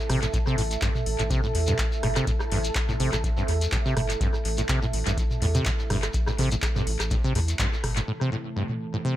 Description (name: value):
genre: acid house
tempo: 124 BPM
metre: 4/4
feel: swing 54% on 16ths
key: A minor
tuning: A4 = 441 Hz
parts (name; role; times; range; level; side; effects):
- deep dark ambient pad; texture; 0.0-9.2 s; A4 to A5; -33 LUFS; right 3 dB; chorus, built-in reverb, sidechain pumping
- acid bass, saw; riff; 0.1-9.2 s; G2 to C3; -28 LUFS; equal; wide subtle chorus, cassette tape, tape echo
- round analog bass; bass; 0.1-8.0 s; G1 to E2; -28 LUFS; equal; sidechain pumping
- booming analog drum machine; drums; 0.1-8.8 s; handclaps, hi-hat, rim click, toms; -31 LUFS; equal; low-pass filter on hats, low-pass filter on snare, low-pass filter on toms, tape echo
- shekere; percussion; 0.2-8.1 s; none; -37 LUFS; left 3 dB; none
- electronic kick drum; drums; 0.3-7.7 s; none; -28 LUFS; equal; overdrive
- warm analog pad; sustained chords; 8.1-9.2 s; C3 to E4; -34 LUFS; right 1 dB; chorus, sidechain pumping
room: little or no reverb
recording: echo-heavy mix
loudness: -23 LUFS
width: side -13 dB against mid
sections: 0.0-8.1 A section; 8.1-9.2 B section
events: band accent 7.6; filter sweep on analog synth pad 8.1-9.2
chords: 0.0 Am